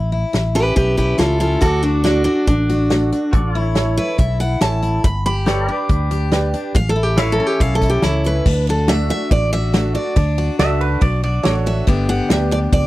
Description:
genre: honky-tonk and classic country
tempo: 140 BPM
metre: 4/4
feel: straight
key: D major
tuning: A4 = 441 Hz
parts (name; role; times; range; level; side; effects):
- picked steel-string acoustic guitar; accompaniment; 0.0-12.9 s; E2 to G4; -24 LUFS; left 4 dB; none
- fingered electric bass; bass; 0.0-12.9 s; G1 to D2; -19 LUFS; equal; none
- natural country drum kit; drums; 0.3-12.8 s; crash cymbal, hi-hat, kick drum, ride cymbal, snare drum; -18 LUFS; equal; none
- picked steel-string acoustic guitar; melody; 0.6-12.9 s; D4 to B5; -20 LUFS; right 1 dB; none
- pedal steel guitar; sustained chords; 1.6-8.5 s; E4 to D5; -27 LUFS; left 1 dB; none
- warm upright piano; accompaniment; 2.0-12.7 s; D4 to D5; -25 LUFS; right 5 dB; none
- pedal steel guitar; second line; 10.6-11.5 s; B4 to E5; -22 LUFS; right 2 dB; none
room: little or no reverb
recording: dry, close 1970s-style studio recording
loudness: -15 LUFS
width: side -17 dB against mid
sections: 0.0-8.5 A section; 8.5-12.9 B section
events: steel-string acoustic guitar solo 0.0-8.5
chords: 0.0 A; 1.6 D; 3.3 A; 5.0 G; 6.8 A; 8.5 D; 11.9 G

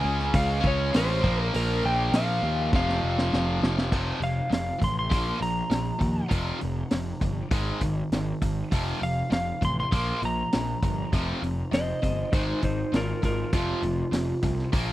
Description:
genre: classic rock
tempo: 100 BPM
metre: 4/4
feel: straight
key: unclear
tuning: A4 = 440 Hz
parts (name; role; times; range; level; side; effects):
- electric slide guitar; melody; 0.0-14.7 s; Eb4 to C6; -30 LUFS; equal; tape echo
- distorted electric guitar; riff; 0.0-14.9 s; F2 to Db4; -30 LUFS; equal; overdrive
- fuzz picked electric bass; bass; 0.0-14.9 s; F1 to Eb2; -28 LUFS; equal; overdrive
- vintage drum kit; drums; 0.2-14.9 s; crash cymbal, hi-hat, kick drum, snare drum; -27 LUFS; equal; none
room: little or no reverb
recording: dry, close 1970s-style studio recording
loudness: -24 LUFS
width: side -15 dB against mid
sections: 0.0-3.9 A section; 3.9-14.9 B section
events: drum fill 2.7-3.9; electric slide guitar solo 3.9-14.9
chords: 0.0 Db5; 1.2 Bb5; 2.7 F5; 3.9 F; 5.1 Bb5; 6.3 F5; 7.5 Ab5; 8.7 F; 9.9 Bb5; 11.1 F5; 12.3 Ab5; 13.5 F5

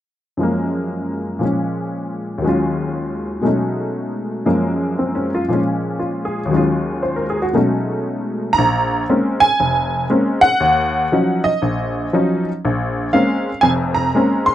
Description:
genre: solo jazz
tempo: 118 BPM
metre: 4/4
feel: swing 66% on 8ths, rubato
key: Bb minor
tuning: A4 = 441 Hz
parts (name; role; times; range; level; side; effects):
- honky-tonk upright piano; solo; 0.4-14.5 s; F1 to C6; -16 LUFS; equal; none
room: moderate studio reverb, RT60 0.6 s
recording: dark, warm production, nothing above 10.7 kHz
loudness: -16 LUFS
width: side -12 dB against mid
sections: 0.4-8.6 A section; 8.6-14.5 B section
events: none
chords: 0.4 Gbmaj9; 1.4 Bbm7; 2.4 Ebm11; 3.4 B13; 4.5 Gbmaj9; 5.5 Bbm7; 6.5 Ebm11; 7.5 B13; 8.6 Bbm9; 10.6 Ebm9; 12.6 Bbm9

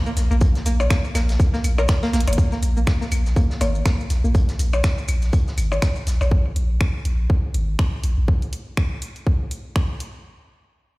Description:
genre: minimal techno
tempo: 122 BPM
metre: 4/4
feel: swing 57% on 16ths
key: unclear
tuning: A4 = 438 Hz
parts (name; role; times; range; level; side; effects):
- string-like resonator pluck; riff; 0.1-4.3 s; Bb3 to Bb4; -28 LUFS; right 1 dB; chorus, sidechain pumping, ping-pong delay
- maracas; percussion; 0.1-6.3 s; none; -38 LUFS; left 4 dB; none
- punchy sub bass; bass; 0.2-8.3 s; Ab1 to Bb1; -20 LUFS; equal; sidechain pumping
- garage drum kit; drums; 0.2-10.1 s; finger snaps, hi-hat; -31 LUFS; equal; small room ambience
- loose indie drum kit; drums; 0.2-6.3 s; hi-hat, snare drum; -37 LUFS; right 1 dB; sidechain pumping on hats, high-pass filter on hats, small room ambience, high-pass filter on snare, high-pass filter on room
- electronic kick drum; drums; 0.4-9.9 s; none; -18 LUFS; equal; small room ambience
- percussion blips and claves; percussion; 0.8-6.3 s; none; -29 LUFS; left 2 dB; small room ambience, digital delay
room: little or no reverb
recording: played on a big sound system in a bare room, stone room reverb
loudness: -18 LUFS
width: side -22 dB against mid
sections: 0.0-2.4 A section; 2.4-10.2 B section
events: drop 0.0-2.4; drum fill 2.1; filter sweep on synth pluck 2.4-4.3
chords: 0.0 Bb5

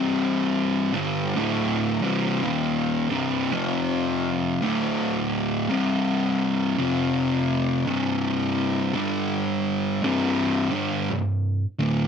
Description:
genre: metal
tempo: 56 BPM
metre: 4/4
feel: swing 62% on 8ths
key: C minor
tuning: A4 = 443 Hz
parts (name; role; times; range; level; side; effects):
- fuzz guitar; solo; 0.0-12.1 s; C2 to G3; -22 LUFS; equal; distortion
room: light reverb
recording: none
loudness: -22 LUFS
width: side -7 dB against mid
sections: 0.0-5.7 A section; 5.7-12.1 B section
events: none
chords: 0.0 Cm; 3.5 F5; 4.6 D5; 5.7 C5; 6.8 F5; 7.9 C5; 9.0 G5; 10.0 C5

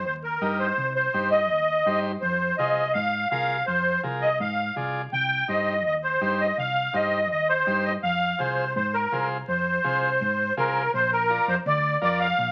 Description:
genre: latin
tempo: 166 BPM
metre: 4/4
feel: straight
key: C minor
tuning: A4 = 442 Hz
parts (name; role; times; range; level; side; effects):
- musette accordion; melody; 0.0-12.5 s; Bb4 to G5; -25 LUFS; equal; none
- hollow-body short-scale fingered electric bass; bass; 0.0-12.5 s; Bb1 to Ab2; -34 LUFS; equal; none
- combo organ; accompaniment; 0.4-12.3 s; Eb4 to Eb5; -33 LUFS; equal; none
room: wet studio reverb, RT60 0.7 s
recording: very old 78 rpm record, vinyl crackle, nothing above 8.0 kHz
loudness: -24 LUFS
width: mono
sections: 0.0-10.9 A section; 10.9-12.5 B section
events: none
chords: 0.0 Cm; 2.2 Fm; 5.1 Cm; 8.0 Fm; 10.9 Bb

